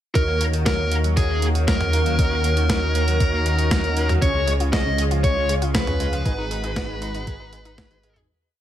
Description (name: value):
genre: synthwave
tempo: 118 BPM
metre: 4/4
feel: straight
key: Eb minor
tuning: A4 = 441 Hz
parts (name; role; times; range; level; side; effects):
- high-gain lead guitar; melody; 0.2-8.2 s; Ab4 to Eb5; -25 LUFS; left 1 dB; distortion, tape echo
- soft synth bell; second line; 0.2-8.2 s; Ab4 to Eb5; -34 LUFS; equal; none
- lush unison pad; sustained chords; 0.5-8.3 s; Eb3 to Bb5; -31 LUFS; equal; chorus, phaser, sidechain pumping
- electric guitar at the edge of break-up; riff; 0.2-8.3 s; Db3 to Ab4; -33 LUFS; right 1 dB; wide subtle chorus, ping-pong delay
- mellow synth brass; stabs; 0.2-8.3 s; Db4 to F5; -31 LUFS; right 3 dB; chorus, phaser
- dark detuned saw bass; bass; 0.2-8.3 s; Ab1 to Eb2; -23 LUFS; equal; sidechain pumping
- clean 12-bit digital drum machine; drums; 0.2-8.3 s; hi-hat, snare drum, toms; -27 LUFS; equal; studio reverb
- electronic kick drum; drums; 0.2-7.9 s; none; -23 LUFS; equal; studio reverb
- analog pluck; arpeggios; 4.2-8.3 s; Db3 to F4; -34 LUFS; left 2 dB; chorus, ping-pong delay
room: light reverb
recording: none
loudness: -18 LUFS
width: side -11 dB against mid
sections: 0.2-8.3 verse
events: fade-out 5.6-8.3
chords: 0.2 Ebm7; 4.2 Db; 6.3 Abm7